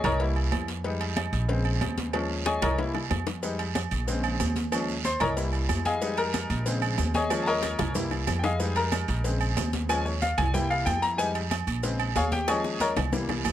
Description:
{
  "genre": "latin, salsa",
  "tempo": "186 BPM",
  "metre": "4/4",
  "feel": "straight",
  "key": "F minor",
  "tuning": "A4 = 444 Hz",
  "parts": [
    { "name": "clear grand piano", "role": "accompaniment", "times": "0.0-13.5 s", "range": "Db3 to C6", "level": "-28 LUFS", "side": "left 3 dB", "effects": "none" },
    { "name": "upright bass", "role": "bass", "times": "0.0-13.5 s", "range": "Bb1 to F2", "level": "-29 LUFS", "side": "right 1 dB", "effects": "none" },
    { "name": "agogo bells and timbales", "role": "percussion", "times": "0.0-13.5 s", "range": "none", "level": "-34 LUFS", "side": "right 10 dB", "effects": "none" },
    { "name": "congas", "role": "percussion", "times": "0.0-13.4 s", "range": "none", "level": "-34 LUFS", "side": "left 1 dB", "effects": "none" },
    { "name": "cowbell and bongos", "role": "percussion", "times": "0.0-13.5 s", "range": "none", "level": "-36 LUFS", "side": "left 6 dB", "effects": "none" },
    { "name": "guiro", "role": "percussion", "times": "0.0-13.5 s", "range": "none", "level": "-40 LUFS", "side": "right 8 dB", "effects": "none" },
    { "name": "maracas", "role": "percussion", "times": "3.4-13.5 s", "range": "none", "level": "-40 LUFS", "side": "right 6 dB", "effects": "none" }
  ],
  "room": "little or no reverb",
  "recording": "close, detailed microphones",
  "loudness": "-24 LUFS",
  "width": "side -12 dB against mid",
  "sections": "0.0-13.5 A section",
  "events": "grand piano solo 0.0-13.5; drum fill 2.1-3.4, 7.3-8.6, 12.5-13.5",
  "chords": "0.2 C7; 0.8 Fm7; 1.5 Bbm7; 2.1 Eb7sus4; 2.8 C7; 3.4 Fm7; 4.1 Bbm7; 4.7 Eb7sus4; 5.4 C7; 6.0 Fm7; 6.7 Bbm7; 7.3 Eb7sus4; 8.0 C7; 8.6 Fm7; 9.2 Bbm7; 9.9 Eb7sus4; 10.5 C7; 11.2 Fm7; 11.8 Bbm7; 12.5 Eb7sus4"
}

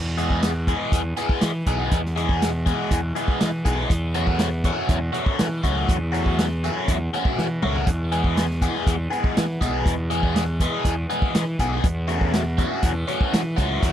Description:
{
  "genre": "psychedelic rock",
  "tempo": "121 BPM",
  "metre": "4/4",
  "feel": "straight",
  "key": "E major",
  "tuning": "A4 = 440 Hz",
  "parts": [
    { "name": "fuzz fingered electric bass", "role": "bass", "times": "0.0-13.9 s", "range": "B1 to E3", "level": "-25 LUFS", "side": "equal", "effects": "overdrive" },
    { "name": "tanpura", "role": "drone", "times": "0.0-13.9 s", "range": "E2 to E3", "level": "-34 LUFS", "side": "right 1 dB", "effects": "none" },
    { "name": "biting overdriven guitar", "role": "riff", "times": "0.2-13.9 s", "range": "E3 to G#4", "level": "-24 LUFS", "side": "left 1 dB", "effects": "phaser" },
    { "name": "vintage drum kit", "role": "drums", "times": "0.2-13.9 s", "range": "hi-hat, kick drum, snare drum, toms", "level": "-23 LUFS", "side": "equal", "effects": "none" }
  ],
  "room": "little or no reverb",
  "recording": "dry, close 1970s-style studio recording",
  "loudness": "-20 LUFS",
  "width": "side -10 dB against mid",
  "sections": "0.0-13.9 A section",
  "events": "drum fill 7.4-7.9",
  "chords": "0.0 E; 3.9 F#m; 7.9 E; 11.8 F#m"
}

